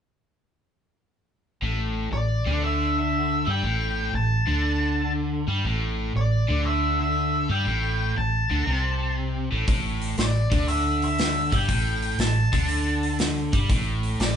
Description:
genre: blues rock power trio and southern rock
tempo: 119 BPM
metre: 4/4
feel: swing 67% on 8ths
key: A minor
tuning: A4 = 440 Hz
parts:
  - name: crunchy overdriven guitar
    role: riff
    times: 1.6-14.4 s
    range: A2 to G3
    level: -25 LUFS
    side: equal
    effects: none
  - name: woody fretless electric bass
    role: bass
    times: 1.6-14.4 s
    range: A1 to G2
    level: -28 LUFS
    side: equal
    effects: none
  - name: octave-fuzz lead guitar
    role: melody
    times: 2.1-14.4 s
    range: D5 to A5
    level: -27 LUFS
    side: left 1 dB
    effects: distortion
  - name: big rock drum kit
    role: drums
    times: 9.7-14.4 s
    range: hi-hat, kick drum, snare drum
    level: -26 LUFS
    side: equal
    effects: none
room: moderate studio reverb, RT60 0.7 s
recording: band playing live in one room, nothing above 10.9 kHz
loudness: -22 LUFS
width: side -8 dB against mid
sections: 1.6-14.4 A section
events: none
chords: 1.6 Am

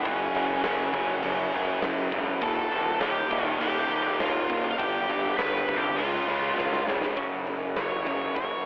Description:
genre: quiet-loud alternative rock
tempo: 101 BPM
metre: 4/4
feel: straight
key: unclear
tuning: A4 = 440 Hz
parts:
  - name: octave-fuzz lead guitar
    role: melody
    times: 0.0-8.7 s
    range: C#4 to B5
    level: -32 LUFS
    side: equal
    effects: distortion, cassette tape
  - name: crunchy overdriven guitar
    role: riff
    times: 0.0-8.7 s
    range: Eb2 to C#4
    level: -33 LUFS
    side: equal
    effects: cassette tape
  - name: fuzz picked electric bass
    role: bass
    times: 0.1-8.6 s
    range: Eb1 to Eb2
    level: -34 LUFS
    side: equal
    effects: overdrive
  - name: huge arena drum kit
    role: drums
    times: 0.1-8.5 s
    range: crash cymbal, hi-hat, kick drum, snare drum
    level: -34 LUFS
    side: equal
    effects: cassette tape
  - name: twelve-string electric guitar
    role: arpeggios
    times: 7.2-8.6 s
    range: F#2 to F#3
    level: -41 LUFS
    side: equal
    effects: none
room: light reverb, small room ambience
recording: home recording on cassette, telephone sound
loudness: -27 LUFS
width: mono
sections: 0.0-7.2 A section; 7.2-8.7 B section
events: drum fill 6.6-7.2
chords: 0.1 F#5; 2.4 Eb; 4.8 G; 6.0 C#; 7.2 F#5

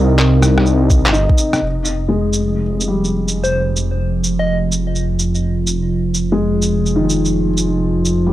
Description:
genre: future garage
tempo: 126 BPM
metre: 4/4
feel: swing 65% on 16ths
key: F minor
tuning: A4 = 439 Hz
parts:
  - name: felt-muted upright piano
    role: accompaniment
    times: 0.0-8.3 s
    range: Eb3 to F4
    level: -20 LUFS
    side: left 2 dB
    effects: sidechain pumping, tape echo
  - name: warbly tape-like pad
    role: sustained chords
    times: 0.0-8.3 s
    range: C3 to Bb4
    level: -19 LUFS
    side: right 1 dB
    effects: chorus, built-in reverb, sidechain pumping
  - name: swelling detuned saw bass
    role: bass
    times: 0.0-8.3 s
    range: F1 to C2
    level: -18 LUFS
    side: equal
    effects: tube saturation, sidechain pumping
  - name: wind-like tuned noise texture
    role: texture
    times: 0.0-1.6 s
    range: Eb5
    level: -32 LUFS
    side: right 7 dB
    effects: built-in reverb
  - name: electronic handclaps, rim click and shaker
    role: drums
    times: 0.2-8.2 s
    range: none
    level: -20 LUFS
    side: equal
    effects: studio reverb
  - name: electronic kick drum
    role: drums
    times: 0.9-1.4 s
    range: none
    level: -13 LUFS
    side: equal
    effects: overdrive, studio reverb
  - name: soft struck synth lead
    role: melody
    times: 3.4-4.6 s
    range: C5 to Eb5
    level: -22 LUFS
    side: equal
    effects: chorus, tape echo
room: little or no reverb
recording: dry, gritty hardware recording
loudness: -14 LUFS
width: side -14 dB against mid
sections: 0.0-1.6 A section; 1.6-8.3 B section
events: none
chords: 0.0 Cm7; 1.6 Fm7

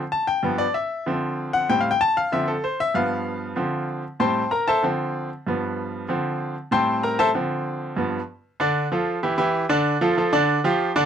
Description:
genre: latin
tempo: 191 BPM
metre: 4/4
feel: straight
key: unclear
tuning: A4 = 440 Hz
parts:
  - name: bright baby grand piano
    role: solo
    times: 0.1-11.1 s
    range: G2 to C6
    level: -20 LUFS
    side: equal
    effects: none
room: light reverb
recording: dry, close 1970s-style studio recording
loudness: -21 LUFS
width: side -8 dB against mid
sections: 0.0-8.6 A section; 8.6-11.1 B section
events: grand piano solo 0.0-8.6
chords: 0.4 G7; 1.1 Dm7; 1.7 Am7; 2.3 Dm7; 3.0 G7; 3.6 Dm7; 4.2 Am7; 4.8 Dm7; 5.5 G7; 6.1 Dm7; 6.7 Am7; 7.3 Dm7; 8.0 G7; 8.6 Dm; 9.2 Dsus24; 9.9 Dm; 10.5 G5

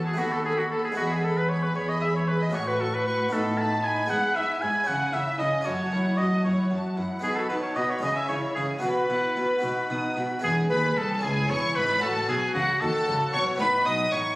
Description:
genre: classical, baroque-style concerto movement with solo episodes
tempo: 76 BPM (dotted quarters)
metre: 6/8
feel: straight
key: E major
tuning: A4 = 443 Hz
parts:
  - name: clear studio violin section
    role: melody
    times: 0.0-14.4 s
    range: E5 to D#6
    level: -32 LUFS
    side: equal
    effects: none
  - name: rich chamber violin section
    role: second line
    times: 0.0-14.2 s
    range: F#4 to A5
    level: -34 LUFS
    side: equal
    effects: none
  - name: dark symphonic viola section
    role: accompaniment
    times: 0.0-14.4 s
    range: C#4 to A4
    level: -33 LUFS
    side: equal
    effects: none
  - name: harpsichord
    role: accompaniment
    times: 0.0-14.4 s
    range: C2 to A4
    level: -30 LUFS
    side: equal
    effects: none
  - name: warm studio cello section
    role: bass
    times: 0.0-14.2 s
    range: C2 to D#3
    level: -32 LUFS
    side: equal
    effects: none
  - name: clear oboe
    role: melody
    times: 0.1-14.4 s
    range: F#4 to A5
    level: -27 LUFS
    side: equal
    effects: none
  - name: rich chamber double bass section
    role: bass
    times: 10.4-14.2 s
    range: E1 to D#2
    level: -34 LUFS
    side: equal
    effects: none
room: wet scoring stage reverb, RT60 1.7 s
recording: recorded on a phone in the room, club reverb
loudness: -23 LUFS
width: side -20 dB against mid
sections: 0.0-10.4 A section; 10.4-14.4 B section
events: none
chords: 0.2 B7/D#; 1.0 E; 2.5 F#m/A; 3.3 B7/A; 4.1 E/G#; 4.9 C#m; 5.7 F#m7; 7.2 B7; 8.0 C#m; 8.8 Bsus4; 9.6 B; 10.4 E; 11.2 C#m; 12.0 F#m; 13.6 B7/A

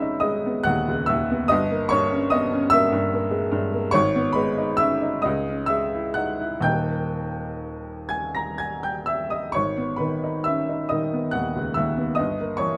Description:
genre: classical, romantic nocturne for solo piano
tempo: 40-51 BPM (dotted quarters)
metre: 6/8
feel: rubato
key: G# minor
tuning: A4 = 440 Hz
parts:
  - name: bright upright piano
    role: solo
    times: 0.0-12.8 s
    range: D#1 to A#6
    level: -24 LUFS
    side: equal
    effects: none
room: light reverb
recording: none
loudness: -24 LUFS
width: mono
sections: 0.0-12.8 A section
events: none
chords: 0.0 G#m; 1.5 Gdim7; 3.9 G#m; 5.2 C#m; 6.7 D#; 9.5 G#m; 12.2 Gdim7

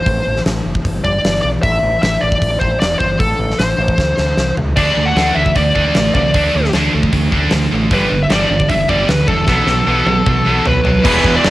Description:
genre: hard rock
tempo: 153 BPM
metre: 4/4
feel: straight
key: A dorian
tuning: A4 = 440 Hz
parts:
  - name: smooth overdriven lead guitar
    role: melody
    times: 0.0-11.5 s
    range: A4 to F#5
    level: -17 LUFS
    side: equal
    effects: cassette tape
  - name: growling fingered electric bass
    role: bass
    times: 0.1-11.5 s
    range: E1 to D2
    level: -19 LUFS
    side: equal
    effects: overdrive
  - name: huge arena drum kit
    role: drums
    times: 0.1-11.5 s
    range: crash cymbal, hi-hat, kick drum, snare drum, toms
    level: -17 LUFS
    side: left 1 dB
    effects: cassette tape
  - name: heavy high-gain guitar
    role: riff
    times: 4.8-11.5 s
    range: E2 to D4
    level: -21 LUFS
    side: left 6 dB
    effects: distortion, cassette tape
  - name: scooped high-gain guitar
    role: riff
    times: 4.8-11.5 s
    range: E2 to D4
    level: -18 LUFS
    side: right 5 dB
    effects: distortion, cassette tape
  - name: tight distorted guitar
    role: riff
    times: 11.0-11.5 s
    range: E3 to E4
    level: -16 LUFS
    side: equal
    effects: distortion, cassette tape
room: light reverb, studio ambience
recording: home recording on cassette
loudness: -12 LUFS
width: side -16 dB against mid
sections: 0.0-11.1 A section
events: drum fill 4.0-4.8, 9.5-11.1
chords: 0.0 Am; 0.9 G5; 1.6 Am; 4.0 Csus2/D; 4.4 N.C.; 4.8 D5; 7.9 G5; 9.5 B5

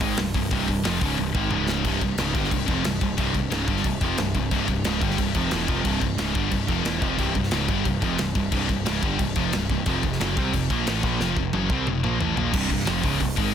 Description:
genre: heavy metal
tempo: 180 BPM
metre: 4/4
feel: straight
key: C phrygian dominant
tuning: A4 = 440 Hz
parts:
  - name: scooped high-gain guitar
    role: riff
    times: 0.0-13.5 s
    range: C2 to C4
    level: -27 LUFS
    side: left 12 dB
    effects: distortion
  - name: sludgy distorted guitar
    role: riff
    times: 0.0-13.5 s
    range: C2 to C4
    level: -26 LUFS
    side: right 8 dB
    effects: overdrive
  - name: growling picked electric bass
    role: bass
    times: 0.0-13.5 s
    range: C1 to C2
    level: -30 LUFS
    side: left 1 dB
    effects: overdrive
  - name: modern studio drum kit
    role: drums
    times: 0.0-13.4 s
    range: crash cymbal, hi-hat, kick drum, snare drum, toms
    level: -27 LUFS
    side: left 1 dB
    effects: none
room: light reverb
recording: dense, heavily limited modern master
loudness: -21 LUFS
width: side -8 dB against mid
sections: 0.0-1.8 A section; 1.8-12.5 B section; 12.5-13.5 A section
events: drum fill 1.2-1.8, 11.2-12.5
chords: 0.0 C5; 1.5 Db5; 1.8 C; 9.9 F5; 12.5 C5

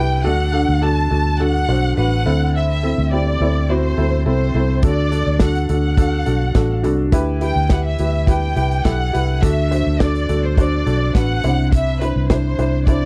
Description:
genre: piano-driven pop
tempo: 105 BPM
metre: 4/4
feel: straight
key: D mixolydian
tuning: A4 = 440 Hz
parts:
  - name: warm studio violin section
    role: melody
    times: 0.0-13.1 s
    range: B4 to A5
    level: -26 LUFS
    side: equal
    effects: slapback echo
  - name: felt-muted upright piano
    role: accompaniment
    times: 0.0-13.1 s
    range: C3 to C5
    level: -23 LUFS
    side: equal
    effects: none
  - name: vintage muted fingered electric bass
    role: bass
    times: 0.0-13.1 s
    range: A1 to D2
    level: -21 LUFS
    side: equal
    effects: none
  - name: loose indie drum kit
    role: drums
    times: 4.8-13.0 s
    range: hi-hat, kick drum, snare drum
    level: -18 LUFS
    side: equal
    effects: none
room: little or no reverb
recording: dry, close 1970s-style studio recording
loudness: -18 LUFS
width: mono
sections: 0.0-13.1 A section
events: none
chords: 0.2 D; 2.3 Am/D; 4.8 D; 7.1 Em/D; 9.4 D; 11.4 Cadd9

